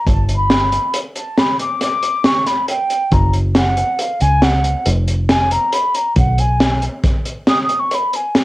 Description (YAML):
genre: progressive instrumental, band music in an uneven meter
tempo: 138 BPM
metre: 7/4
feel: straight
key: unclear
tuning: A4 = 440 Hz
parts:
  - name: mellow hollow concert flute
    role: melody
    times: 0.0-8.4 s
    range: E#5 to D#6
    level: -17 LUFS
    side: equal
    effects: none
  - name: fingered electric bass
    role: bass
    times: 0.1-6.9 s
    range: E#1 to C#2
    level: -16 LUFS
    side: equal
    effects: none
  - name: crunchy breakbeat drum kit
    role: drums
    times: 0.1-8.4 s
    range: hi-hat, kick drum, snare drum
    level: -17 LUFS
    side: equal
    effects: none
room: little or no reverb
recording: home recording on cassette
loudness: -14 LUFS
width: side -17 dB against mid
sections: 0.0-8.4 A section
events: flute solo 0.0-8.4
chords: 0.1 G; 3.1 F#5; 6.2 B5